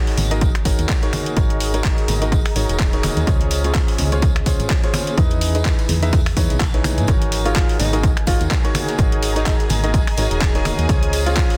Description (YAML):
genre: piano house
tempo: 126 BPM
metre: 4/4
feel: swing 57% on 16ths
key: unclear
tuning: A4 = 444 Hz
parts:
  - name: clear grand piano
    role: riff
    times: 0.0-11.6 s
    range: Db4 to E5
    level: -27 LUFS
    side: equal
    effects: sidechain pumping, delay
  - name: ethereal airy pad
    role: texture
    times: 1.2-11.6 s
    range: E3 to Bb5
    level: -34 LUFS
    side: equal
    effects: ensemble chorus, built-in reverb, sidechain pumping
  - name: garage drum kit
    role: drums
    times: 0.1-11.6 s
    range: finger snaps, handclaps, hi-hat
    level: -28 LUFS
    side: equal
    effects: soft clipping on snare
  - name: solid FM bass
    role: bass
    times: 0.2-11.4 s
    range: Eb1 to G#2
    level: -24 LUFS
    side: equal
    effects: tube saturation, sidechain pumping
  - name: congas and tambourine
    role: percussion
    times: 0.2-11.5 s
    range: none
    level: -31 LUFS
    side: equal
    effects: none
  - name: electronic kick drum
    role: drums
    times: 0.4-11.5 s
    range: none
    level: -21 LUFS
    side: equal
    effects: none
  - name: string machine, violins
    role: sustained chords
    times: 7.1-11.6 s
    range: Ab4 to Ab5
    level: -33 LUFS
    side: equal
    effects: ensemble chorus, sidechain pumping
  - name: breakbeat sampler-style drum kit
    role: drums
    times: 7.1-11.5 s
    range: hi-hat, snare drum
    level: -39 LUFS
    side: equal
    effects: none
  - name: breathy alto saxophone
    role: melody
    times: 7.5-11.6 s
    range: Eb4 to F4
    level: -29 LUFS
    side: equal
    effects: delay
room: digital ambience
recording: dense, heavily limited modern master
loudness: -18 LUFS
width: mono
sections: 0.0-11.6 A section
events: none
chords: 0.0 Ab9sus4; 3.3 Dbmaj7; 5.2 Emaj7; 7.1 Ab9sus4; 10.9 Dbmaj7